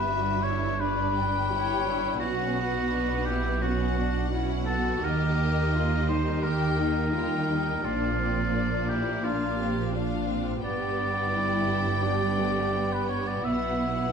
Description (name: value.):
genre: cinematic.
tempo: 85 BPM.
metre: 4/4.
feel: rubato.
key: unclear.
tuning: A4 = 439 Hz.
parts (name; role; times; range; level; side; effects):
rich studio violin section; melody; 0.0-14.1 s; D5 to G5; -36 LUFS; left 6 dB; none.
warm oboe; second line; 0.0-14.1 s; F4 to E5; -30 LUFS; left 1 dB; none.
rich studio viola section; accompaniment; 0.0-14.1 s; F3 to C#5; -32 LUFS; right 2 dB; none.
rich studio cello section; bass; 0.0-14.1 s; G2 to Eb3; -31 LUFS; right 2 dB; none.
rich studio double bass section; bass; 0.0-14.1 s; G1 to Eb2; -31 LUFS; right 3 dB; none.
clear studio violin section; second line; 0.8-14.1 s; A3 to G4; -34 LUFS; left 6 dB; none.
room: moderate scoring stage reverb, RT60 1.6 s.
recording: none.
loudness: -24 LUFS.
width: side -6 dB against mid.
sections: 0.0-14.1 A section.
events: none.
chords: 0.0 G; 2.2 Bsus4; 5.0 Eb; 7.8 Bb; 10.6 G; 13.5 Bsus4.